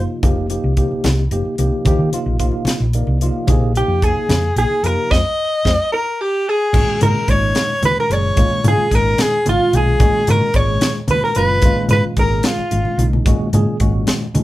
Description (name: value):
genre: electric jazz fusion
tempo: 74 BPM (dotted quarters)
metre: 6/8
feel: straight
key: F dorian, G# dorian from 6.7 s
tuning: A4 = 442 Hz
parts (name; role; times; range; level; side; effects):
- breathy soprano saxophone; melody; 0.0, 3.8-13.1 s; E#4 to Eb5; -18 LUFS; left 1 dB; none
- hollow-body jazz guitar; second line; 0.0, 3.8-13.1 s; E#4 to Eb5; -24 LUFS; right 3 dB; none
- tine electric piano; accompaniment; 0.0-14.4 s; A#2 to D5; -21 LUFS; equal; overdrive, fast stereo tremolo
- hollow-body short-scale fingered electric bass; bass; 0.0-14.4 s; F1 to Eb3; -18 LUFS; equal; none
- tight funk drum kit; drums; 0.2-14.4 s; crash cymbal, hi-hat, kick drum, snare drum; -18 LUFS; equal; none
- congas; percussion; 0.2-14.4 s; none; -23 LUFS; equal; none
room: moderate studio reverb, RT60 0.5 s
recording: band playing live in one room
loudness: -14 LUFS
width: side -16 dB against mid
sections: 0.0-6.7 A section; 6.7-14.4 B section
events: tine electric piano fill 2.7-3.5; band accent 5.1-6.7; drum fill 5.9-6.7, 12.6-13.3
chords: 0.2 F9sus4; 1.9 Ebmaj9; 3.5 Bb9sus4; 5.1 Fm7; 5.9 N.C.; 6.7 G#sus2; 8.4 C#7/G#; 10.0 G#sus2; 11.6 C#7/G#; 13.3 G#sus2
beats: | 0.23 1.05 | 1.86 2.68 | 3.49 4.30 | 5.12 5.93 | 6.75 7.56 | 8.38 9.19 | 10.00 10.82 | 11.63 12.45 | 13.26 14.08